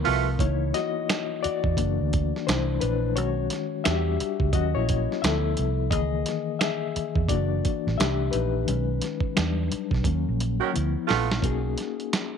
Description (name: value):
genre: R&B, neo-soul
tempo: 87 BPM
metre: 4/4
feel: swing 62% on 16ths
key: unclear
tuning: A4 = 440 Hz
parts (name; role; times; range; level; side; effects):
- reed electric piano; accompaniment; 0.0-12.4 s; D#3 to E5; -27 LUFS; left 10 dB; overdrive, fast tremolo
- warm saxophone section; stabs; 0.0-0.3, 10.6-11.3 s; B2 to F#4; -26 LUFS; right 14 dB; none
- vintage muted fingered electric bass; bass; 0.0-11.7 s; F#1 to E2; -26 LUFS; right 2 dB; none
- dusty soul sampler-style drum kit; drums; 0.1-12.3 s; finger snaps, hi-hat, kick drum, snare drum; -27 LUFS; right 3 dB; none
room: moderate spring reverb, RT60 1.6 s, digital ambience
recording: 1960s-style stereo with parts hard left and right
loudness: -23 LUFS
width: side -7 dB against mid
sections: 0.0-11.4 A section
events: band accent 0.0-0.4, 8.7-11.4; reed electric piano solo 0.0-11.4; drum fill 10.7-11.4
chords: 0.4 C#m69; 1.8 F#aug7; 2.5 C69; 3.2 B69; 3.8 Em7; 4.5 D#m7; 5.2 Dm69; 5.9 C#m69; 7.3 F#7alt; 8.0 C69; 8.7 B69; 9.4 Em7; 10.0 D#m7; 10.7 Dm69; 11.4 Bmaj7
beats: | 0.39 1.08 1.77 2.46 | 3.15 3.84 4.53 5.22 | 5.91 6.60 7.29 7.98 | 8.67 9.36 10.05 10.74 | 11.43 12.12